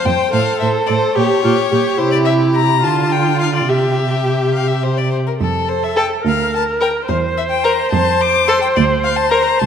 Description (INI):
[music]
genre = quick classical-period movement for string quartet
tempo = 71 BPM (dotted quarters)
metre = 6/8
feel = straight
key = unclear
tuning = A4 = 441 Hz
[part]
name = rich violin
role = melody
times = 0.0-9.7 s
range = A4 to D6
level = -19 LUFS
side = left 9 dB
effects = none
[part]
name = rich violin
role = second line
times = 0.0-9.4 s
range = F4 to C5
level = -20 LUFS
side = left 3 dB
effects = none
[part]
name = warm viola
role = accompaniment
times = 0.0-9.7 s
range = E4 to C5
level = -18 LUFS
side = right 2 dB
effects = none
[part]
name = dark cello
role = bass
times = 0.1-9.7 s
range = C2 to D3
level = -19 LUFS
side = right 4 dB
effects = none
[sound]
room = wet scoring stage reverb, RT60 2.0 s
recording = none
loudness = -13 LUFS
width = side -8 dB against mid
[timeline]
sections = 0.0-9.7 A section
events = none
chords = 0.3 Am; 1.2 Gdim/Bb; 2.0 C; 2.8 Dm; 3.7 C; 5.4 F; 6.2 Bb/D; 7.1 C7/E; 7.9 F; 8.8 Bb/D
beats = | 0.33 1.16 | 1.99 2.83 | 3.68 4.54 | 5.40 6.24 | 7.09 7.93 | 8.77 9.60